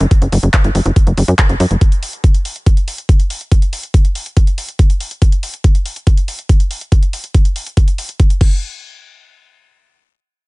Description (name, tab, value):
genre	psychedelic trance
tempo	141 BPM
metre	4/4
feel	straight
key	unclear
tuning	A4 = 440 Hz
part	tight sequencer bass	bass	0.0-1.8 s	F#1 to F#2	-12 LUFS	equal	none
part	drum and bass drum kit	drums	0.0-8.5 s	crash cymbal, handclaps, hi-hat	-23 LUFS	equal	overdrive
part	electronic kick drum	drums	0.1-8.5 s	none	-10 LUFS	equal	overdrive
room	little or no reverb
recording	nothing above 10.4 kHz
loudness	-12 LUFS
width	side -25 dB against mid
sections	0.0-8.6 A section; 8.6-10.5 B section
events	none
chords	none